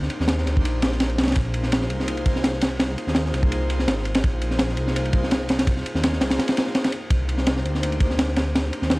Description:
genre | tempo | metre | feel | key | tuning
drum and bass, jungle | 167 BPM | 4/4 | swing 53% on 16ths | unclear | A4 = 439 Hz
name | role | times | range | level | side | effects
dark detuned saw bass | bass | 0.0-9.0 s | Ab1 to Eb2 | -25 LUFS | equal | none
crunchy breakbeat drum kit | drums | 0.0-9.0 s | kick drum, ride cymbal, snare drum | -22 LUFS | equal | none
room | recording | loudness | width
small room reverb | dry, gritty hardware recording, cassette tape | -20 LUFS | side -23 dB against mid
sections
0.0-9.0 A section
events
none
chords
none

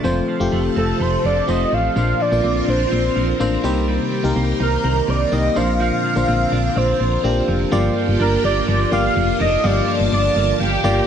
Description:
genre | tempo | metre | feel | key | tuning
pop | 125 BPM | 4/4 | straight | unclear | A4 = 439 Hz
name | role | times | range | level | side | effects
FM electric piano | accompaniment | 0.0-11.1 s | G2 to F5 | -22 LUFS | left 3 dB | chorus
phased string machine | sustained chords | 0.0-11.1 s | C3 to A5 | -25 LUFS | left 1 dB | ensemble chorus, phaser
direct-recorded clean electric guitar | riff | 0.0-11.1 s | F3 to Eb4 | -26 LUFS | right 6 dB | lush chorus
solid FM bass | bass | 0.0-11.0 s | F1 to C2 | -21 LUFS | equal | none
warm velvety synth lead | melody | 0.8-10.6 s | A4 to F5 | -21 LUFS | right 1 dB | chorus, digital delay
warm studio violin section | second line | 10.6-11.0 s | G4 | -21 LUFS | right 1 dB | digital delay
room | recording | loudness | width
light reverb | none | -16 LUFS | side -8 dB against mid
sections
0.0-7.7 A section; 7.7-11.1 B section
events
none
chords
0.0 F; 2.0 Bbadd9; 3.6 Cm7; 5.6 Bbadd9; 7.7 Gm7

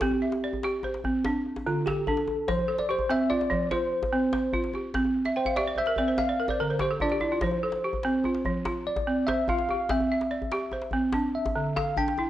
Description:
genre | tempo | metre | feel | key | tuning
west african traditional, West African string and xylophone music | 97 BPM (dotted quarters) | 12/8 | straight | F major | A4 = 439 Hz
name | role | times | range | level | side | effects
bell-like tine electric piano | melody | 0.0-12.3 s | F4 to G5 | -29 LUFS | left 1 dB | fast stereo tremolo
balafon | arpeggios | 0.0-12.3 s | D3 to G5 | -27 LUFS | right 2 dB | none
djembe | percussion | 0.0-12.3 s | none | -35 LUFS | left 2 dB | none
room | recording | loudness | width
wet recital hall reverb, RT60 1.5 s | worn, warbling old tape, cassette tape, warbly pitch drift | -25 LUFS | side -13 dB against mid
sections
0.0-12.3 A section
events
tine electric piano solo 0.0-12.3; balafon fill 5.3-7.4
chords
0.0 C; 1.2 D5; 2.5 F; 4.9 C; 6.2 N.C.; 7.4 F; 9.9 C; 11.1 D5

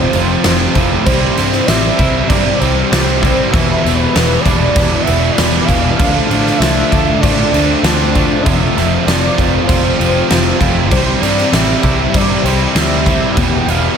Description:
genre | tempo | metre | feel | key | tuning
rock, shoegaze and dream pop | 97 BPM | 4/4 | straight | unclear | A4 = 440 Hz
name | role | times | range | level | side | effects
warm velvety synth lead | melody | 0.0-14.0 s | B4 to G5 | -20 LUFS | right 1 dB | chorus, digital delay
twangy electric guitar | arpeggios | 0.0-14.0 s | F3 to E4 | -25 LUFS | left 3 dB | analog chorus, digital delay
distorted electric guitar | riff | 0.0-14.0 s | E2 to D4 | -19 LUFS | right 1 dB | overdrive
overdriven electric guitar | riff | 0.0-14.0 s | C3 to F4 | -20 LUFS | right 11 dB | reverse reverb
thick fuzz guitar | riff | 0.0-14.0 s | E2 to D4 | -20 LUFS | left 9 dB | distortion, wide subtle chorus
vintage muted picked electric bass | bass | 0.0-13.9 s | E1 to A2 | -18 LUFS | equal | none
huge arena drum kit | drums | 0.1-13.8 s | crash cymbal, kick drum, snare drum | -15 LUFS | right 1 dB | none
room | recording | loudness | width
light reverb, small room ambience | none | -10 LUFS | side -7 dB against mid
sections
0.0-14.0 A section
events
none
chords
0.0 Fmaj7; 1.1 C; 3.5 Em7; 6.0 Dm7; 8.5 Fmaj7; 10.9 C; 13.4 Em

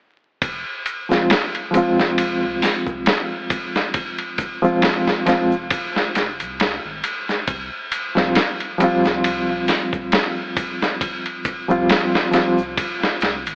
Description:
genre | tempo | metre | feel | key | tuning
trip hop | 68 BPM | 4/4 | swing 55% on 16ths | F minor | A4 = 440 Hz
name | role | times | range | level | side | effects
warm sub bass | bass | 0.4-13.6 s | F1 to C2 | -39 LUFS | equal | none
dusty soul sampler-style drum kit | drums | 0.4-13.6 s | hi-hat, kick drum, ride cymbal, snare drum | -20 LUFS | equal | overdrive
tube shaker | percussion | 0.4-13.6 s | none | -46 LUFS | equal | none
reed electric piano | accompaniment | 1.1-12.6 s | F3 to F4 | -20 LUFS | equal | tremolo, low-pass filter, tape echo
room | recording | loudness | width
light reverb, digital ambience | vinyl crackle, AM radio sound | -17 LUFS | side -36 dB against mid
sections
0.4-13.6 A section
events
filter sweep on reed electric piano 0.4-13.6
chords
0.4 Fm; 7.5 Csus4

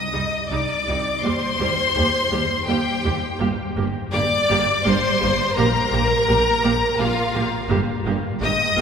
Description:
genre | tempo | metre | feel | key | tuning
classical, slow romantic movement for string orchestra | 83 BPM | 3/4 | rubato | unclear | A4 = 443 Hz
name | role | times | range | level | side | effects
clear studio violin section | melody | 0.0-8.8 s | F5 to Eb6 | -23 LUFS | left 4 dB | none
rich studio violin section | second line | 0.0-8.8 s | F4 to Eb5 | -23 LUFS | equal | none
rich studio viola section | accompaniment | 0.1-8.8 s | G3 to G4 | -27 LUFS | right 2 dB | none
warm studio cello section | bass | 0.1-8.8 s | C2 to Bb2 | -26 LUFS | right 2 dB | none
warm studio double bass section | bass | 0.1-8.8 s | G1 to Eb2 | -26 LUFS | right 2 dB | none
room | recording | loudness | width
wet cathedral reverb, RT60 5.3 s | recorded in a church or concert hall | -18 LUFS | side -7 dB against mid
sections
0.0-8.8 A section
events
none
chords
0.0 Cm; 1.2 Cm/Eb; 3.4 Gm; 5.6 Gm/Bb; 7.7 Gm

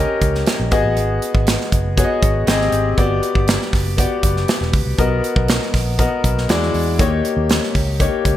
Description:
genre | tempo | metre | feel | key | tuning
polished 1980s jazz-funk pop | 120 BPM | 4/4 | straight | unclear | A4 = 438 Hz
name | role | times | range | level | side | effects
clear concert grand piano | accompaniment | 0.0-8.4 s | G#3 to D#5 | -19 LUFS | left 3 dB | lush chorus
fingered electric bass with an envelope filter | bass | 0.0-8.4 s | E1 to E2 | -21 LUFS | equal | none
modern studio drum kit | drums | 0.2-8.4 s | hi-hat, kick drum, snare drum | -18 LUFS | right 1 dB | gated reverb
room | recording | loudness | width
light reverb | bright 1980s-style digital production | -15 LUFS | side -12 dB against mid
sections
0.0-8.4 A section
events
none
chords
0.0 D#7; 0.7 G#m7; 2.5 G#maj7; 3.0 Gmaj7; 5.0 Bmaj7; 6.5 E9; 7.0 D#7

